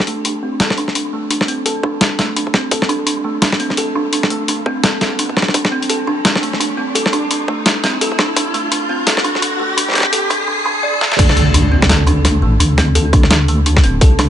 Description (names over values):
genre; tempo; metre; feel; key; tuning
half-time drum and bass; 170 BPM; 4/4; swing 60% on 16ths, half-time; unclear; A4 = 440 Hz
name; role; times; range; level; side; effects
kalimba; arpeggios; 0.0-14.3 s; A3 to D5; -19 LUFS; right 1 dB; low-pass filter, dub echo
boom bap sampler-style drum kit; drums; 0.0-14.3 s; crash cymbal, hi-hat, snare drum; -16 LUFS; left 1 dB; none
riser and impact; sound effects; 1.7-12.6 s; none; -21 LUFS; equal; none
electronic kick drum; drums; 1.8-14.1 s; none; -12 LUFS; equal; high-pass filter on kick
deep soft wobble bass; bass; 11.2-14.3 s; D1 to D2; -14 LUFS; equal; chorus
room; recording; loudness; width
light reverb; high-pass filter, nothing above 10.7 kHz; -13 LUFS; side -10 dB against mid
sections
0.0-11.2 A section; 11.2-14.3 B section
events
build-up 0.0-11.2; filter sweep on kalimba 0.0-11.2; riser 1.7-11.2; drum fill 11.0; drop 11.2-14.3; impact 11.2-12.6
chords
0.0 Amadd11; 11.2 D5